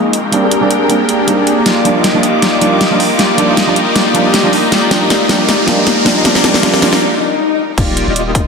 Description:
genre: future bass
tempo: 157 BPM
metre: 4/4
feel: swing 54% on 16ths, half-time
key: Eb major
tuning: A4 = 439 Hz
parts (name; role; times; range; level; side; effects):
- muted studio string section; sustained chords; 0.0-8.5 s; G3 to D6; -22 LUFS; equal; sidechain pumping, low-pass filter
- soft supersaw; riff; 0.0-8.5 s; Bb3 to Eb5; -13 LUFS; left 1 dB; sidechain pumping, low-pass filter, ping-pong delay
- riser and swell; sound effects; 0.0-7.8 s; none; -18 LUFS; left 3 dB; none
- dubstep drum kit; drums; 0.1-8.4 s; crash cymbal, hi-hat, snare drum; -15 LUFS; equal; none
- felt-muted upright piano; accompaniment; 0.3-6.9 s; F3 to Eb4; -16 LUFS; right 3 dB; sidechain pumping, ping-pong delay
- long sustained 808-style bass; bass; 7.8-8.5 s; Eb1; -20 LUFS; left 1 dB; sidechain pumping
- electronic kick drum; drums; 7.8-8.4 s; none; -14 LUFS; left 1 dB; none
room: wet digital room reverb, RT60 1.1 s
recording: dense, heavily limited modern master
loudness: -9 LUFS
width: side -5 dB against mid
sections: 0.0-7.8 A section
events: build-up 0.0-7.8; riser 0.0-7.0; filter sweep on supersaw synth 0.0-7.8; drum fill 1.7-7.0; break 7.0-7.8; swell 7.0-7.8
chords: 0.1 Abmaj9#11; 1.7 Ebmaj9; 4.7 Bb7sus4; 6.2 Abmaj9#11; 7.8 Ebmaj9

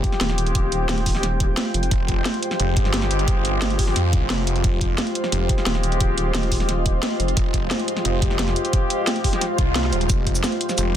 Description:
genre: dark technical drum and bass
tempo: 176 BPM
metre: 4/4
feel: straight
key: F minor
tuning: A4 = 440 Hz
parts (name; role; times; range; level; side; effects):
- deep dark ambient pad; sustained chords; 0.4-11.0 s; Ab3 to Eb5; -29 LUFS; equal; chorus, built-in reverb, sidechain pumping
- dark brass ensemble; stabs; 0.0-11.0 s; Ab3 to G4; -28 LUFS; left 3 dB; tape echo
- snarling distorted saw bass; bass; 0.0-10.9 s; Eb1 to F2; -23 LUFS; equal; distortion, overdrive, sidechain pumping
- drum and bass drum kit; drums; 0.0-10.8 s; cabasa, hi-hat, snare drum; -24 LUFS; right 1 dB; none
- electronic kick drum; drums; 0.0-10.3 s; none; -21 LUFS; equal; none
- airy breathy pad; texture; 0.0-11.0 s; F4 to G5; -29 LUFS; right 1 dB; chorus, sidechain pumping
- vowel-sweep wobble bass; bass; 0.2-1.9, 5.7-7.4 s; Eb1 to F1; -23 LUFS; equal; chorus
- swell; sound effects; 9.5-10.1 s; none; -30 LUFS; left 2 dB; none
room: light reverb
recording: dense, heavily limited modern master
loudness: -19 LUFS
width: side -10 dB against mid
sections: 0.0-11.0 A section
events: swell 9.5-10.1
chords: 0.0 Fmadd9

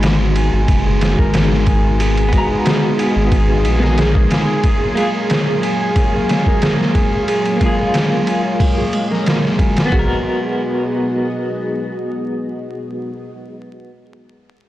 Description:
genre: trip hop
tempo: 91 BPM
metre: 4/4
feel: straight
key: G# dorian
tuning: A4 = 439 Hz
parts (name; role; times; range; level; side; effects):
- string machine, cellos; sustained chords; 0.0-13.3 s; F#3 to E#5; -22 LUFS; equal; ensemble chorus
- Celtic harp; arpeggios; 0.0-12.2 s; G#3 to G#5; -22 LUFS; equal; low-pass filter, tape echo
- round analog bass; bass; 0.0-4.3 s; F#1 to A#1; -16 LUFS; equal; tube saturation
- trip hop sampler-style drum kit; drums; 0.0-10.1 s; kick drum, ride cymbal, snare drum, toms; -17 LUFS; equal; overdrive
- bowed-like drone; texture; 0.5-9.9 s; G#4; -25 LUFS; right 1 dB; built-in reverb
- clean electric guitar; accompaniment; 2.3-14.1 s; A#3 to A#5; -22 LUFS; equal; tremolo, low-pass filter, tape echo
room: light reverb, digital ambience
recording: blown-out, overdriven recording, vinyl crackle, overdrive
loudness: -14 LUFS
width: side -14 dB against mid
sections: 0.0-9.9 A section; 9.9-12.6 B section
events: filter sweep on clean electric guitar 0.0-9.9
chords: 0.0 G#m7; 4.6 F#maj7; 9.9 G#m7

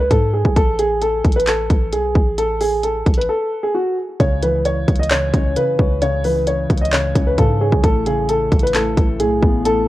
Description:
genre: hip hop, trap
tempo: 132 BPM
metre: 4/4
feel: half-time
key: C# minor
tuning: A4 = 440 Hz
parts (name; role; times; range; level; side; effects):
- dark baby grand piano; melody; 0.0-9.9 s; F#4 to D#5; -18 LUFS; equal; cassette tape
- warm 808-style bass; bass; 0.0-9.9 s; A1 to G#2; -22 LUFS; equal; none
- trap drum kit; drums; 0.1-9.8 s; handclaps, hi-hat, kick drum; -17 LUFS; equal; none
- felt-muted upright piano; accompaniment; 4.2-9.9 s; A2 to C#5; -22 LUFS; left 2 dB; cassette tape
room: light reverb, studio reverb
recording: home recording on cassette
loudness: -15 LUFS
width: side -16 dB against mid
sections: 0.0-9.9 A section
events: break 3.3-4.2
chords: 0.0 C#5; 0.6 N.C.; 4.2 C#m; 7.8 Aadd9

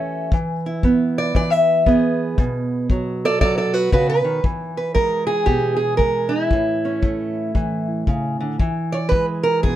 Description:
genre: acoustic country blues, solo or duo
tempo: 116 BPM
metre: 4/4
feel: swing 61% on 8ths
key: E mixolydian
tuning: A4 = 442 Hz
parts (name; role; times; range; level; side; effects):
- fingerpicked acoustic archtop guitar; melody; 0.0-9.8 s; A2 to E5; -18 LUFS; right 1 dB; plate reverb
- kick drum; drums; 0.3-9.8 s; none; -20 LUFS; left 1 dB; none
room: moderate booth ambience, RT60 0.2 s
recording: dark, warm production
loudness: -17 LUFS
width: side -12 dB against mid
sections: 0.0-4.4 A section; 4.4-9.8 B section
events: steel-string acoustic guitar solo 0.0-4.4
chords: 0.3 E; 2.4 B7(no3); 4.4 E; 6.5 A; 8.6 E

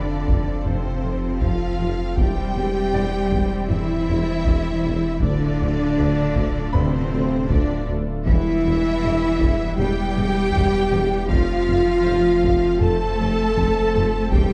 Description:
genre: cinematic, hybrid orchestral and electronic film score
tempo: 79 BPM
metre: 4/4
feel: straight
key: unclear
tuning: A4 = 440 Hz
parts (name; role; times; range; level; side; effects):
- warm symphonic violin section; melody; 0.0-14.5 s; C5 to A5; -38 LUFS; equal; none
- dark symphonic violin section; second line; 0.0-14.5 s; C5 to A5; -35 LUFS; equal; none
- dark symphonic viola section; accompaniment; 0.0-14.5 s; C4 to A4; -31 LUFS; equal; none
- brassy analog pad; sustained chords; 0.0-14.5 s; E3 to C5; -34 LUFS; equal; chorus
- mellow French horn section; sustained chords; 0.0-14.5 s; C4 to A4; -26 LUFS; equal; none
- mellow tuba; bass; 0.0-14.5 s; E1 to D2; -33 LUFS; equal; none
- rich studio cello section; bass; 0.0-14.5 s; C3 to A3; -29 LUFS; equal; none
- saturated sub bass; bass; 0.0-14.5 s; D1 to F1; -30 LUFS; equal; none
- bright grand piano; texture; 0.0-14.4 s; B3 to B5; -40 LUFS; equal; none
- warm symphonic double bass section; bass; 0.3-14.4 s; D2 to F2; -30 LUFS; equal; none
- taiko ensemble; drums; 0.3-14.5 s; none; -27 LUFS; equal; none
room: wet scoring stage reverb, RT60 1.8 s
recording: dark, warm production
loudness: -20 LUFS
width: mono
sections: 0.0-14.5 A section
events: none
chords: 0.0 F; 2.2 C/E; 5.2 Dm; 8.3 Em; 11.3 F

